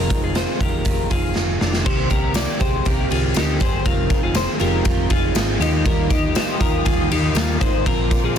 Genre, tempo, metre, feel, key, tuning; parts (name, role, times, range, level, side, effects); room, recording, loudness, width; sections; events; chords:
jangly indie pop; 120 BPM; 4/4; straight; A4 = 439 Hz
picked plugged-in steel-string acoustic guitar; accompaniment; 0.0-8.4 s; F2 to G4; -25 LUFS; right 9 dB
twelve-string electric guitar; arpeggios; 0.0-8.4 s; Bb3 to D5; -24 LUFS; left 8 dB; analog chorus
hollow-body short-scale fingered electric bass; bass; 0.0-8.4 s; F1 to Eb2; -24 LUFS; equal
raw garage drum kit; drums; 0.1-8.2 s; crash cymbal, hi-hat, kick drum, ride cymbal, snare drum; -20 LUFS; equal
tambourine; percussion; 1.9-8.4 s; -37 LUFS; left 16 dB
warm studio string section; sustained chords; 5.8-8.4 s; Bb4 to Eb6; -30 LUFS; left 2 dB
light reverb; dense, heavily limited modern master; -17 LUFS; side -8 dB against mid
0.0-1.9 A section; 1.9-8.4 B section
drum fill 1.4-1.9
0.0 Fm7; 1.9 Cm7; 3.9 Fm7; 5.6 Ebadd9; 7.9 Bbadd9